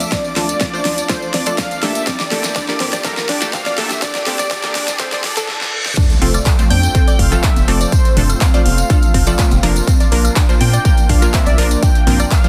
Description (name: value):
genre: progressive house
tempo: 123 BPM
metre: 4/4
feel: straight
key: unclear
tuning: A4 = 440 Hz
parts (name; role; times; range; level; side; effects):
- unison lead; melody; 0.0-12.5 s; Bb4 to G5; -26 LUFS; equal; analog chorus, delay
- filtered supersaw swell; sustained chords; 0.0-12.5 s; A3 to A5; -31 LUFS; equal; none
- unison pluck; arpeggios; 0.0-12.2 s; C4 to D5; -27 LUFS; equal; sidechain pumping, tape echo
- unison pluck; stabs; 0.0-12.5 s; F3 to C5; -25 LUFS; equal; sidechain pumping, tape echo
- round analog bass; bass; 0.0-12.2 s; F1 to Bb2; -18 LUFS; equal; sidechain pumping
- big-room dance drum kit; drums; 0.0-12.5 s; crash cymbal, handclaps, hi-hat, rim click, snare drum; -24 LUFS; equal; none
- tambourine; percussion; 0.0-12.5 s; none; -30 LUFS; equal; none
- riser, reverse cymbal and impact; sound effects; 0.2-7.9 s; none; -30 LUFS; equal; none
- backwards swelling texture; texture; 0.0-5.5 s; D5 to D6; -39 LUFS; equal; none
- electronic kick drum; drums; 0.1-12.4 s; none; -16 LUFS; equal; none
- electronic woodblock, congas and toms; percussion; 6.3-12.3 s; none; -27 LUFS; equal; sidechain pumping on perc, sidechain pumping on toms
room: light reverb, digital ambience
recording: dense, heavily limited modern master, high-pass filter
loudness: -15 LUFS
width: mono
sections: 0.0-6.0 A section; 6.0-12.5 B section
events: build-up 0.0-6.0; drum fill 0.0-5.5, 5.5-6.0; filter sweep on synth pluck 0.0-6.0; filter sweep 0.0-6.0; reverse cymbal 5.0-6.0; drop 6.0-12.5; impact 6.0-7.9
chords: 0.0 Dm; 2.1 Gmadd9; 6.0 F; 9.9 Bb